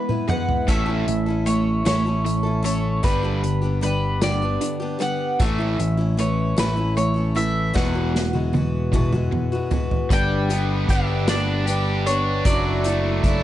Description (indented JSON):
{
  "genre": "folk rock and heartland rock",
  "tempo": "51 BPM (dotted quarters)",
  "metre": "6/8",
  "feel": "straight",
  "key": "A mixolydian",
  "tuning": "A4 = 439 Hz",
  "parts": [
    { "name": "mandolin", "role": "melody", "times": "0.0-13.4 s", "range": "B4 to G5", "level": "-26 LUFS", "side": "equal", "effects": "none" },
    { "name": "picked steel-string acoustic guitar", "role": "accompaniment", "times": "0.0-13.4 s", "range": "E2 to B4", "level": "-27 LUFS", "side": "left 4 dB", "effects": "none" },
    { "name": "cranked stack guitar", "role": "riff", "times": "0.0-13.4 s", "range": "E2 to G4", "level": "-26 LUFS", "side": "right 1 dB", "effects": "overdrive" },
    { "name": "unplugged drum kit", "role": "drums", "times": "0.1-13.4 s", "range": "hi-hat, kick drum, snare drum, toms", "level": "-24 LUFS", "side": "equal", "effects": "none" },
    { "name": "picked electric bass", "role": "bass", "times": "0.7-13.4 s", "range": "E1 to A1", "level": "-23 LUFS", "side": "equal", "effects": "none" },
    { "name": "accordion", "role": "sustained chords", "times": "10.1-13.4 s", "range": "D4 to D5", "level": "-34 LUFS", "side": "right 3 dB", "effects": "none" }
  ],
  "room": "light reverb, small room ambience",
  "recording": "nothing above 11.0 kHz",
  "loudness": "-19 LUFS",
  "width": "side -13 dB against mid",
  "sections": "0.0-10.1 A section; 10.1-13.4 B section",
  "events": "drum fill 0.0-0.7, 7.8-10.1",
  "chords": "0.0 E/G#; 0.7 A; 3.0 G; 5.4 A; 7.8 Eadd9; 10.1 G; 12.5 Dadd9/F#"
}